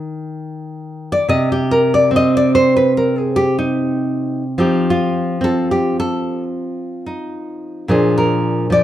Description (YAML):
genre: solo jazz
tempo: 73 BPM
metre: 4/4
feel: swing 67% on 8ths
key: unclear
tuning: A4 = 439 Hz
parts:
  - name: nylon-string guitar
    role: solo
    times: 0.0-8.8 s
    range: Bb2 to Eb5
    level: -15 LUFS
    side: equal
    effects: none
room: moderate large studio reverb, RT60 1.2 s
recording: none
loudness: -14 LUFS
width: side -12 dB against mid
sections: 0.0-8.8 A section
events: nylon-string guitar solo 0.0-8.8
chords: 0.0 Cm; 4.6 Fsus2; 7.9 Bb9